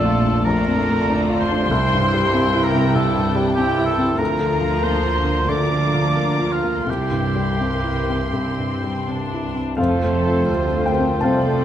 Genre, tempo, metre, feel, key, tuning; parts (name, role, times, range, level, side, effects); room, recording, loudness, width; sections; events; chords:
classical; 80-98 BPM; 4/4; rubato; F major; A4 = 440 Hz
clear grand piano; melody; 0.0-11.6 s; Bb1 to A5; -21 LUFS; left 2 dB
muted symphonic violin section; melody; 0.0-11.6 s; A4 to C6; -32 LUFS; left 4 dB
muted symphonic violin section; second line; 0.0-11.6 s; D5 to D6; -29 LUFS; left 1 dB
warm oboe; second line; 0.0-11.6 s; F4 to D5; -25 LUFS; right 1 dB
muted symphonic viola section; accompaniment; 0.0-11.6 s; F3 to A4; -25 LUFS; right 1 dB
muted symphonic cello section; bass; 0.0-11.6 s; C2 to D3; -27 LUFS; right 3 dB
muted symphonic double bass section; bass; 0.0-11.6 s; F1 to D2; -26 LUFS; right 3 dB
mellow clarinet; second line; 9.8-11.6 s; A4; -30 LUFS; left 4 dB
mellow hollow silver concert flute; second line; 9.8-11.6 s; A4 to C5; -28 LUFS; left 1 dB
warm bassoon; accompaniment; 9.8-11.6 s; C4; -26 LUFS; right 4 dB
warm French horn section; sustained chords; 9.8-11.6 s; A3 to C4; -29 LUFS; left 4 dB
moderate scoring stage reverb, RT60 1.6 s; close, detailed microphones; -17 LUFS; side -10 dB against mid
0.0-9.8 A section; 9.8-11.6 B section
0.0 Bbmaj7; 1.7 C; 4.2 Bb/D; 6.9 C; 9.8 F